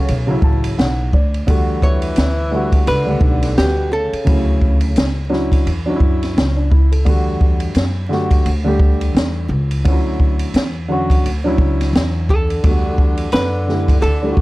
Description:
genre	hip hop, jazz-hop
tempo	86 BPM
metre	4/4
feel	swing 58% on 16ths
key	E dorian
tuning	A4 = 439 Hz
part	archtop guitar, miked and amplified	melody	0.0-5.3, 12.3-14.4 s	G4 to C#5	-22 LUFS	equal	tape echo
part	mellow tenor saxophone	second line	0.0-5.3, 12.3-14.4 s	B2 to E3	-26 LUFS	left 1 dB	none
part	dark baby grand piano	accompaniment	0.0-14.4 s	C#3 to A5	-21 LUFS	equal	none
part	upright bass	bass	0.0-14.4 s	A1 to F#2	-20 LUFS	equal	none
part	open jazz drum kit	drums	0.1-14.4 s	hi-hat, kick drum, ride cymbal, snare drum	-16 LUFS	equal	none
room	small room ambience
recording	dry, gritty hardware recording, vinyl crackle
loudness	-14 LUFS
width	side -19 dB against mid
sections	0.0-14.4 A section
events	grand piano fill 0.1-1.5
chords	0.0 Dmaj9; 1.5 Em11; 4.3 Dmaj9; 7.1 Em11; 9.9 Dmaj9; 12.6 Em11

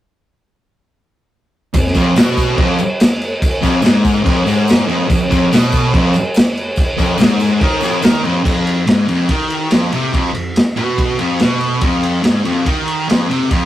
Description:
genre	garage rock duo or trio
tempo	143 BPM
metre	4/4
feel	straight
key	unclear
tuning	A4 = 441 Hz
part	thick fuzz guitar	riff	1.7-13.7 s	F2 to Eb3	-15 LUFS	equal	distortion
part	crunchy breakbeat drum kit	drums	1.7-13.6 s	crash cymbal, kick drum, ride cymbal, snare drum	-15 LUFS	equal	none
part	tambourine	percussion	1.7-8.1 s	none	-34 LUFS	left 4 dB	none
room	light reverb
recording	rough rehearsal-room recording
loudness	-12 LUFS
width	side -13 dB against mid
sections	1.7-8.5 A section; 8.5-13.7 B section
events	none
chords	none

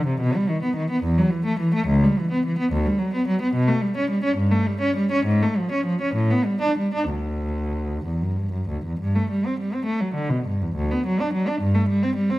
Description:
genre	classical, baroque-style suite movement for unaccompanied cello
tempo	62-75 BPM (dotted quarters)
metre	6/8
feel	rubato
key	D major, G major from 9.0 s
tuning	A4 = 445 Hz
part	warm cello	solo	0.0-12.4 s	C#2 to D4	-20 LUFS	equal	none
room	moderate recital hall reverb, RT60 1.4 s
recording	close, detailed microphones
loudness	-20 LUFS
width	side -17 dB against mid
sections	0.0-9.0 A section; 9.0-12.4 A section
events	none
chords	none

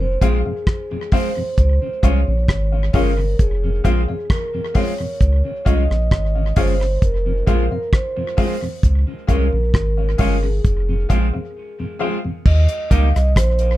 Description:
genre	roots reggae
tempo	66 BPM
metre	4/4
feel	straight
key	F minor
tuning	A4 = 440 Hz
part	vibraphone with soft mallets	melody	0.0-13.8 s	Ab4 to F5	-25 LUFS	right 1 dB	tape echo, plate reverb
part	mellow tonewheel organ	accompaniment	0.0-12.3 s	F2 to F4	-28 LUFS	left 2 dB	chorus vibrato
part	soft dub sub bass	bass	0.0-13.8 s	F1 to Eb2	-17 LUFS	equal	none
part	semi-hollow electric guitar	accompaniment	0.2-13.1 s	F3 to G4	-27 LUFS	right 1 dB	tape echo
part	bright concert grand piano	stabs	0.2-13.7 s	Eb4 to F5	-27 LUFS	left 6 dB	none
part	damped 70s drum kit	drums	0.2-13.8 s	crash cymbal, hi-hat, kick drum, rim click	-17 LUFS	equal	none
room	little or no reverb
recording	dark, warm production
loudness	-16 LUFS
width	side -15 dB against mid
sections	0.0-12.5 A section; 12.5-13.8 B section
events	break 11.6-12.5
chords	0.0 Fm; 1.6 Db; 3.4 Fm; 5.2 Db; 7.0 Fm; 8.8 Db; 10.6 Fm; 12.5 Eb

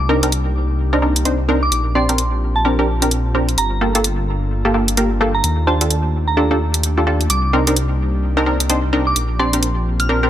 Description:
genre	UK garage, two-step garage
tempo	129 BPM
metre	4/4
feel	swing 60% on 16ths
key	unclear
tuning	A4 = 438 Hz
part	soft synth bell	melody	0.0-10.1 s	A5 to F6	-24 LUFS	right 2 dB	chorus, tape echo
part	airy breathy pad	sustained chords	0.0-10.3 s	A3 to A4	-28 LUFS	left 1 dB	chorus
part	dark detuned saw bass	bass	0.0-10.3 s	G1 to Eb2	-19 LUFS	equal	none
part	punchy chord stab	stabs	0.1-10.3 s	Bb3 to D5	-19 LUFS	equal	chorus, tape echo
part	electronic hi-hat	drums	0.2-10.1 s	none	-19 LUFS	equal	none
room	light reverb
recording	none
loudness	-15 LUFS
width	side -11 dB against mid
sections	0.0-10.3 A section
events	none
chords	0.0 Cm9; 1.7 Bb69; 3.6 Gm9; 5.4 Ebmaj9#11; 7.3 Cm9; 9.2 Bb69

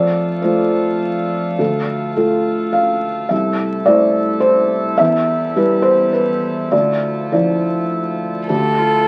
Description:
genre	neoclassical piano and strings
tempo	104 BPM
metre	3/4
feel	rubato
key	D dorian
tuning	A4 = 436 Hz
part	felt-muted upright piano	accompaniment	0.0-9.1 s	C2 to F5	-17 LUFS	equal	none
part	pedal harmonium	sustained chords	0.0-9.1 s	F3 to A4	-27 LUFS	equal	none
part	rich violin	melody	8.5-9.1 s	A4	-18 LUFS	equal	none
part	dark viola	accompaniment	8.5-9.1 s	F4 to G4	-25 LUFS	equal	none
room	moderate studio reverb, RT60 0.8 s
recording	very old 78 rpm record, vinyl crackle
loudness	-17 LUFS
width	mono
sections	0.0-8.5 A section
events	none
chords	0.0 F; 1.6 Dm; 3.3 Am/C; 5.0 Em; 6.7 Dmadd9; 8.5 Dm

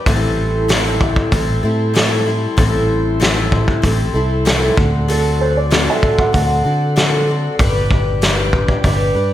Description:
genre	folk rock and heartland rock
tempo	96 BPM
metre	4/4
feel	straight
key	A dorian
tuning	A4 = 438 Hz
part	picked twelve-string acoustic guitar	accompaniment	0.0-9.3 s	A2 to B4	-19 LUFS	left 2 dB	slapback echo
part	mellow tonewheel organ	sustained chords	0.0-9.3 s	A4 to D6	-25 LUFS	right 1 dB	slow rotary speaker
part	fingered electric bass	bass	0.1-9.3 s	G1 to D3	-18 LUFS	equal	none
part	loose indie drum kit	drums	0.1-9.0 s	hi-hat, kick drum, snare drum	-17 LUFS	equal	none
part	dark upright piano	second line	5.1-7.6 s	G#4 to F#5	-20 LUFS	right 2 dB	slapback echo
room	moderate recital hall reverb, RT60 1.5 s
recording	big arena sound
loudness	-13 LUFS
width	side -12 dB against mid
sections	0.0-9.3 A section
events	none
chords	0.1 Am7; 4.8 D7; 7.6 G

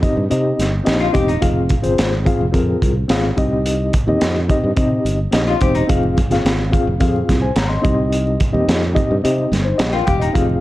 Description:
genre	uptempo 1960s-style soul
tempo	107 BPM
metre	4/4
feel	straight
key	unclear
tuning	A4 = 440 Hz
part	mellow reed electric piano	accompaniment	0.0-10.6 s	C3 to C6	-19 LUFS	left 2 dB	fast tremolo
part	fingered electric bass	bass	0.0-10.6 s	E1 to C3	-20 LUFS	equal	none
part	crunchy breakbeat drum kit	drums	0.0-10.5 s	hi-hat, kick drum, snare drum	-19 LUFS	equal	none
part	archtop guitar, miked and amplified	riff	1.0-1.5, 5.5-6.0, 9.9-10.5 s	Eb4 to G4	-22 LUFS	left 4 dB	none
part	congas	percussion	5.9-10.6 s	none	-28 LUFS	right 4 dB	none
room	light reverb, small room ambience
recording	dark, warm production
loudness	-14 LUFS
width	side -16 dB against mid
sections	0.0-10.6 A section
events	reed electric piano fill 9.5-10.4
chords	0.0 Cm; 1.4 Fm; 3.4 Cm; 5.9 Fm; 7.8 Cm

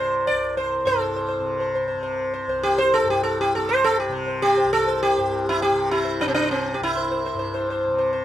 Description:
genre	indian classical, Hindustani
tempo	101 BPM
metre	5/4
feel	straight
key	C raga bhupali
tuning	A4 = 440 Hz
part	sitar	melody	0.0-8.2 s	C4 to D5	-20 LUFS	equal	none
part	tanpura	drone	0.0-8.2 s	C2 to C3	-29 LUFS	left 2 dB	none
room	light reverb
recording	minimal, uncompressed stereo recording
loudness	-20 LUFS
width	side -12 dB against mid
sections	0.8-8.2 A section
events	none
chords	none

